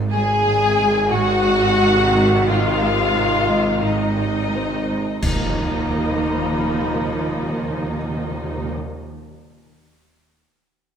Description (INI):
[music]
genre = cinematic, suspense film score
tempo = 88 BPM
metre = 4/4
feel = straight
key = Eb dorian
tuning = A4 = 439 Hz
[part]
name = muted symphonic viola section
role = accompaniment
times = 0.0-8.7 s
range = C3 to Bb3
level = -26 LUFS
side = right 2 dB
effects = none
[part]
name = muted symphonic cello section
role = bass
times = 0.0-8.7 s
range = Eb2 to Ab2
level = -26 LUFS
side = right 3 dB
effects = none
[part]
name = muted symphonic double bass section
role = bass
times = 0.0-8.7 s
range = Ab1 to Eb2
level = -26 LUFS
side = right 3 dB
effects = none
[part]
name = felt-muted upright piano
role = texture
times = 0.0-5.2 s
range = C4 to Eb5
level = -31 LUFS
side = left 2 dB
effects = none
[part]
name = muted chamber violin section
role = melody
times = 0.1-8.7 s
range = Eb5 to Ab5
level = -25 LUFS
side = left 6 dB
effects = none
[part]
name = muted symphonic violin section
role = second line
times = 0.1-8.7 s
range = Eb4 to Ab4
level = -24 LUFS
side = equal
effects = none
[part]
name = clear French horn section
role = sustained chords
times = 0.1-8.7 s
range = Eb4 to Ab4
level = -23 LUFS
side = left 2 dB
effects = none
[part]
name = muted symphonic cello section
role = riff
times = 0.1-5.1 s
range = Ab2 to Ab3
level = -28 LUFS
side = right 1 dB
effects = none
[part]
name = clash cymbals and concert bass drum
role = percussion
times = 5.2-6.5 s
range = none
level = -27 LUFS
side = equal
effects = none
[part]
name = timpani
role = percussion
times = 5.2-8.9 s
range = Eb3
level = -29 LUFS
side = equal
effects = none
[part]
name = impact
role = sound effects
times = 5.2-9.0 s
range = none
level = -31 LUFS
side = equal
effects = none
[part]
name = muted symphonic violin section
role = texture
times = 5.2-7.6 s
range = Bb5 to Cb6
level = -33 LUFS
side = right 1 dB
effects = none
[sound]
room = wet scoring stage reverb, RT60 1.6 s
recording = none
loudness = -17 LUFS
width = side -8 dB against mid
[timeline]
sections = 0.0-5.2 A section; 5.2-8.0 B section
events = band accent 5.2-5.9; impact 5.2-8.0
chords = 0.0 Ab7; 5.2 Ebsus2